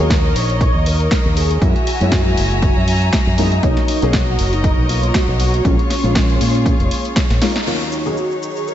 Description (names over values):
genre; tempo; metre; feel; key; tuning
nu-disco, nu disco; 119 BPM; 4/4; swing 56% on 16ths; Eb minor; A4 = 440 Hz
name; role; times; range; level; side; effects
wide unison lead; melody; 0.0-8.7 s; Db4 to Db5; -23 LUFS; equal; ensemble chorus, ping-pong delay
dark baby grand piano; accompaniment; 0.0-8.1 s; Eb2 to Ab4; -24 LUFS; left 2 dB; analog chorus, sidechain pumping, ping-pong delay
rich chamber string section; sustained chords; 0.0-8.7 s; Eb3 to Bb5; -24 LUFS; left 2 dB; sidechain pumping
fingered electric bass with an envelope filter; bass; 0.0-7.4 s; F1 to Bb2; -17 LUFS; equal; none
house drum kit; drums; 0.0-8.7 s; crash cymbal, hi-hat, shaker, snare drum; -23 LUFS; equal; none
electronic kick drum; drums; 0.1-7.3 s; none; -18 LUFS; equal; none
room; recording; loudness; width
light reverb; nothing above 7.9 kHz; -14 LUFS; side -11 dB against mid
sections
0.0-7.7 A section; 7.7-8.7 B section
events
drum fill 7.3-7.7; band accent 7.5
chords
0.0 Eb7(no3); 1.6 Gb9; 3.6 Bmaj9; 5.7 Bbm7; 7.7 Ebm7